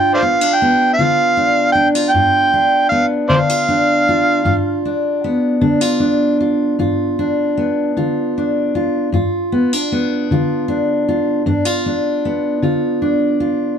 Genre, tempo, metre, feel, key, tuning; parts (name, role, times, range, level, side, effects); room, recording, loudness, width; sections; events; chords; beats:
acoustic country blues, solo or duo; 51 BPM (dotted quarters); 12/8; straight; G mixolydian; A4 = 440 Hz
overdriven harmonica; melody; 0.0-4.8 s; C5 to G5; -14 LUFS; right 2 dB
fingerpicked steel-string acoustic guitar; accompaniment; 0.0-13.8 s; G2 to F4; -15 LUFS; equal
moderate small room reverb, RT60 0.5 s; dark, warm production; -14 LUFS; side -8 dB against mid
0.0-13.8 A section
0.0 G7
0.96 2.13 3.29 | 4.46 5.62 6.79 7.96 | 9.12 10.29 11.46 12.63